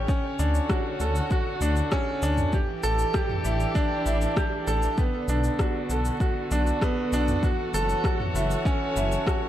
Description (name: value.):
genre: piano and strings electronica.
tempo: 98 BPM.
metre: 4/4.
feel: straight.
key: D major.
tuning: A4 = 440 Hz.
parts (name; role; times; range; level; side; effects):
warm string quartet; sustained chords; 0.0-9.5 s; D3 to C#5; -32 LUFS; right 1 dB; sidechain pumping.
bright baby grand piano; riff; 0.0-9.5 s; B3 to C#5; -27 LUFS; equal; digital delay.
dark detuned saw bass; bass; 0.0-9.2 s; F#1 to D2; -26 LUFS; equal; sidechain pumping.
deep house drum kit; drums; 0.1-9.4 s; rim click, shaker, toms; -32 LUFS; equal; overdrive.
electronic kick drum; drums; 0.1-9.4 s; none; -26 LUFS; equal; overdrive.
room: light reverb, digital ambience.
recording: dark, warm production.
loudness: -23 LUFS.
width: side -12 dB against mid.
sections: 0.1-9.5 A section.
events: drop 0.1-9.5.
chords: 0.1 Dmaj7; 2.5 A7sus4; 5.0 Bm7; 7.4 F#m7.